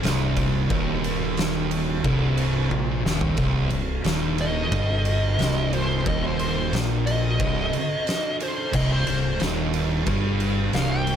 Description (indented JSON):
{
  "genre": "stoner and doom metal",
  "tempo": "90 BPM",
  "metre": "4/4",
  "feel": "straight",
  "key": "C minor",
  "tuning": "A4 = 442 Hz",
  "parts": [
    { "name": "thick fuzz guitar", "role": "riff", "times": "0.0-11.2 s", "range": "C2 to Bb2", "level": "-27 LUFS", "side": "left 6 dB", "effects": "distortion" },
    { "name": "thick fuzz guitar", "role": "riff", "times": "0.0-11.2 s", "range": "C2 to Bb2", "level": "-26 LUFS", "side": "right 7 dB", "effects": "distortion" },
    { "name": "growling fingered electric bass", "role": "bass", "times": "0.0-11.2 s", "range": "C1 to Bb1", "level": "-29 LUFS", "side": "equal", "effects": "overdrive" },
    { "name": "oversized low-tuned drum kit", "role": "drums", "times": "0.0-11.2 s", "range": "crash cymbal, kick drum, ride cymbal, snare drum, toms", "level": "-27 LUFS", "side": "equal", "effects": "none" },
    { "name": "fuzz lead guitar", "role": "melody", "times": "4.4-11.2 s", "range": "C5 to G5", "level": "-28 LUFS", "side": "equal", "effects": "wah, distortion" }
  ],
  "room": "light reverb, small room ambience",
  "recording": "none",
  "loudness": "-21 LUFS",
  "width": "side -9 dB against mid",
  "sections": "0.0-3.4 A section; 3.4-11.2 B section",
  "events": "drum fill 2.7-3.4; lead electric guitar solo 3.4-11.2",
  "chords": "0.0 Cm",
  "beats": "0.03 | 0.70 1.37 2.04 2.71 | 3.38 4.05 4.72 5.39 | 6.06 6.73 7.40 8.07 | 8.74 9.41 10.08 10.74"
}